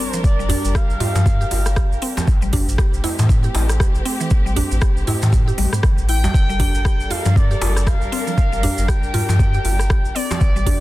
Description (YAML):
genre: afro house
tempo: 118 BPM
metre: 4/4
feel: swing 58% on 16ths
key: G dorian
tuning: A4 = 435 Hz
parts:
  - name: expressive portamento lead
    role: melody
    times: 0.0-2.0, 6.1-10.8 s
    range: D5 to G5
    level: -27 LUFS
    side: equal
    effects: analog chorus, dub echo
  - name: dark chamber string section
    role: sustained chords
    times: 0.0-10.8 s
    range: G3 to A5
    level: -30 LUFS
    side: equal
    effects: sidechain pumping
  - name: mallet-like synth pluck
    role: arpeggios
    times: 0.0-10.8 s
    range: E3 to G4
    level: -27 LUFS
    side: equal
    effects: chorus, sidechain pumping, dub echo
  - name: maracas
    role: percussion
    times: 0.1-10.6 s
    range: none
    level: -32 LUFS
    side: right 4 dB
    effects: none
  - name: warm sub bass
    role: bass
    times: 0.2-10.7 s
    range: G1 to A2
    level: -20 LUFS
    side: equal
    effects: sidechain pumping
  - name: electronic kick drum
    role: drums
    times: 0.2-10.8 s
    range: none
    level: -17 LUFS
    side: equal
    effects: none
  - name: afro-pop drum kit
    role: drums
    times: 0.5-10.8 s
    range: hi-hat, rim click, toms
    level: -26 LUFS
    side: right 1 dB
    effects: soft clipping on snare
  - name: djembe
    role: percussion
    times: 0.5-10.8 s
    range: none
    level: -27 LUFS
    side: left 1 dB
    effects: none
room: small room ambience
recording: dense, heavily limited modern master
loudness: -15 LUFS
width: side -17 dB against mid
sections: 0.0-10.8 A section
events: none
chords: 0.0 Gm7; 2.3 Am7; 6.3 Gm7